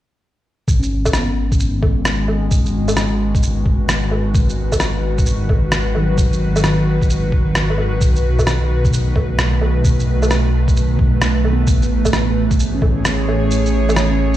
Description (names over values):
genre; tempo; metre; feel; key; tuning
future garage; 131 BPM; 4/4; swing 65% on 16ths; G# phrygian; A4 = 437 Hz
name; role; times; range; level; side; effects
airy breathy pad; sustained chords; 1.3-14.4 s; D#3 to C#5; -21 LUFS; right 1 dB; chorus, sidechain pumping
dark detuned saw bass; bass; 0.7-14.4 s; G#1 to B1; -18 LUFS; equal; tube saturation, sidechain pumping
electronic kick drum; drums; 0.7-12.9 s; none; -16 LUFS; equal; none
electronic shaker, woodblock and rim click; drums; 0.7-14.4 s; none; -22 LUFS; equal; none
mellow tine electric piano; accompaniment; 0.8-8.0, 11.5-14.4 s; D#3 to C#4; -24 LUFS; equal; sidechain pumping, digital delay
room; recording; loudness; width
light reverb; played on a big sound system in a bare room, large studio reverb; -14 LUFS; side -13 dB against mid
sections
0.7-14.4 A section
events
kick drops out 13.5-14.4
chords
0.7 G#m7; 8.0 B7; 11.7 Amaj7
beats
| 0.68 1.14 1.60 2.06 | 2.52 2.97 3.43 3.89 | 4.35 4.81 5.26 5.72 | 6.18 6.64 7.10 7.55 | 8.01 8.47 8.93 9.39 | 9.84 10.30 10.76 11.22 | 11.68 12.13 12.59 13.05 | 13.51 13.97